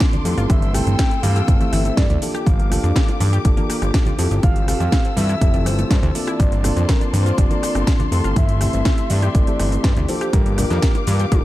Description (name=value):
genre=nu-disco, nu disco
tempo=122 BPM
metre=4/4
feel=straight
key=G dorian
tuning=A4 = 442 Hz
part: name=reed electric piano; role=accompaniment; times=0.0-11.4 s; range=A3 to Bb4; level=-25 LUFS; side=equal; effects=sidechain pumping
part: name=warm studio string section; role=sustained chords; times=0.0-11.4 s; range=Bb3 to E6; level=-30 LUFS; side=left 4 dB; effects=sidechain pumping
part: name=wide unison pluck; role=arpeggios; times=0.0-11.4 s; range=E3 to G4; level=-31 LUFS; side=left 1 dB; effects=none
part: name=electronic kick drum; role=drums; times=0.0-11.4 s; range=none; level=-17 LUFS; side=equal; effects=studio reverb
part: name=house drum kit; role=drums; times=0.0-11.4 s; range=hi-hat, rim click, shaker, snare drum, toms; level=-26 LUFS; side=equal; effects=studio reverb
part: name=maracas, bongos and congas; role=percussion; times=0.0-11.4 s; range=none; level=-29 LUFS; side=right 2 dB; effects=none
part: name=fat analog bass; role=bass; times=0.2-11.4 s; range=F1 to G2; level=-19 LUFS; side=equal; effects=none
part: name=soft octave-layered synth lead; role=melody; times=0.5-11.4 s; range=Bb4 to G5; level=-28 LUFS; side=left 1 dB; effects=chorus, analog delay
room=digital ambience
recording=dark, warm production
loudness=-15 LUFS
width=side -16 dB against mid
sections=0.0-11.4 A section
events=none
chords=0.5 Am7/G; 2.2 Gm7; 4.4 Fmaj9/G; 6.4 Bbmaj9/G; 8.4 Am7/G; 10.1 Gm7